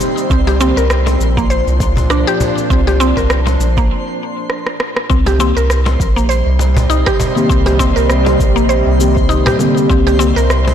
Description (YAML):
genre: organic downtempo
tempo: 100 BPM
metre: 4/4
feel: swing 56% on 16ths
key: C minor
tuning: A4 = 440 Hz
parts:
  - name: muted felt-like synth keys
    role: accompaniment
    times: 0.0-0.7, 5.4-10.3 s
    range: D3 to G4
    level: -18 LUFS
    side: left 2 dB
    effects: chorus, sidechain pumping, ping-pong delay
  - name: bowed-like drone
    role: sustained chords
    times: 0.0-10.7 s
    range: Bb2 to Eb5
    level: -20 LUFS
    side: right 1 dB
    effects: built-in reverb, sidechain pumping
  - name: electronic cabasa and rim click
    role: drums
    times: 0.0-10.6 s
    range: none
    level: -22 LUFS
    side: equal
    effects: soft clipping on snare
  - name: cajon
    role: percussion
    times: 0.0-10.7 s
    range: none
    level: -22 LUFS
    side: left 1 dB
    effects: none
  - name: twinkling granular texture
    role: texture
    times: 0.0-10.7 s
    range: C5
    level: -26 LUFS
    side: equal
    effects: built-in reverb
  - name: mallet-like synth pluck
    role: arpeggios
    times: 0.3-10.5 s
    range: Bb3 to C5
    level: -17 LUFS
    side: equal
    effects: chorus, ping-pong delay
  - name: round analog bass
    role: bass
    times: 0.3-10.7 s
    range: Bb1 to C2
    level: -14 LUFS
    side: equal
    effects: tube saturation
  - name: electronic kick drum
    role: drums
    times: 0.3-10.0 s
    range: none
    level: -17 LUFS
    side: equal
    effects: overdrive
room: light reverb, digital ambience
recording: blown-out, overdriven recording, overdrive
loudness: -11 LUFS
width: side -9 dB against mid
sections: 0.0-5.1 A section; 5.1-10.7 B section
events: break 3.9-5.1; drum fill 4.5-5.1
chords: 0.3 Bbadd9; 5.1 Cm7; 9.9 Bb69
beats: | 0.30 0.90 1.50 2.10 | 2.70 3.30 3.90 4.50 | 5.10 5.70 6.30 6.90 | 7.50 8.10 8.70 9.30 | 9.90 10.50